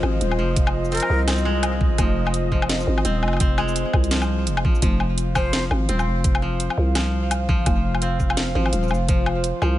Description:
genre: half-time drum and bass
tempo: 169 BPM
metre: 4/4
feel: swing 59% on 16ths, half-time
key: F minor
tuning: A4 = 440 Hz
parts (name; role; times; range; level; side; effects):
- dark analog pad; sustained chords; 0.0-9.8 s; F4 to F5; -28 LUFS; equal; chorus, sidechain pumping
- koto; arpeggios; 0.0-9.8 s; F3 to C4; -28 LUFS; right 1 dB; digital delay
- growling 808-style bass; bass; 0.0-9.8 s; Eb1 to C2; -22 LUFS; equal; none
- drum and bass drum kit; drums; 0.0-9.7 s; hi-hat, shaker, snare drum, woodblock; -27 LUFS; left 1 dB; overdrive
- electronic kick drum; drums; 0.6-9.2 s; none; -21 LUFS; equal; overdrive
- breathy jazz flute; melody; 0.9-1.2, 5.4-5.6 s; Bb4 to C5; -31 LUFS; left 2 dB; ping-pong delay
room: digital ambience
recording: nothing above 10.9 kHz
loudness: -18 LUFS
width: side -14 dB against mid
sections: 0.0-4.8 A section; 4.8-9.8 A section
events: drop 0.0-4.8, 4.8-9.8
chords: 0.0 F5

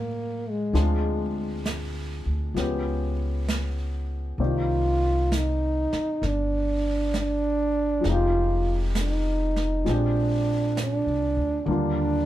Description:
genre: jazz ballad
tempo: 66 BPM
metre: 4/4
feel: swing 68% on 8ths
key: unclear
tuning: A4 = 440 Hz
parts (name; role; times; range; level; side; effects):
- mellow trombone; melody; 0.0-12.3 s; Ab3 to F4; -26 LUFS; right 2 dB; none
- warm grand piano; accompaniment; 0.0-12.3 s; Db3 to D5; -30 LUFS; left 3 dB; none
- upright bass; bass; 0.0-12.3 s; F1 to A2; -26 LUFS; equal; none
- jazz brush drum kit; drums; 0.7-12.3 s; brushed snare drum, hi-hat, snare drum; -34 LUFS; right 3 dB; none
room: light reverb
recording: heard from further back in the room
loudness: -23 LUFS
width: side -13 dB against mid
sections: 0.0-12.3 A section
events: none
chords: 0.0 Gbmaj7; 0.7 Dm7b5; 2.6 Db7#11; 4.4 Cm9; 8.0 Fm7; 9.9 Bb13; 11.7 Ebmaj7

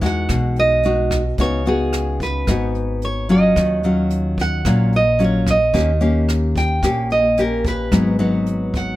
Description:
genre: bossa nova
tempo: 110 BPM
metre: 4/4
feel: straight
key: Eb minor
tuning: A4 = 439 Hz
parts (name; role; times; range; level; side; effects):
- nylon-string guitar; accompaniment; 0.0-9.0 s; Ab2 to G4; -19 LUFS; left 1 dB; none
- upright bass; bass; 0.0-9.0 s; Ab1 to E2; -22 LUFS; equal; none
- jazz brush drum kit; drums; 0.0-8.9 s; hi-hat, kick drum, rim click; -25 LUFS; equal; none
- nylon-string guitar; melody; 0.1-9.0 s; Ab4 to G5; -20 LUFS; right 2 dB; none
room: little or no reverb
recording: none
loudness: -15 LUFS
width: side -16 dB against mid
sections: 0.0-9.0 A section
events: none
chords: 0.0 Emaj9; 1.4 Db9sus4; 3.6 Ebm9; 5.7 Eb7; 7.9 Abm7

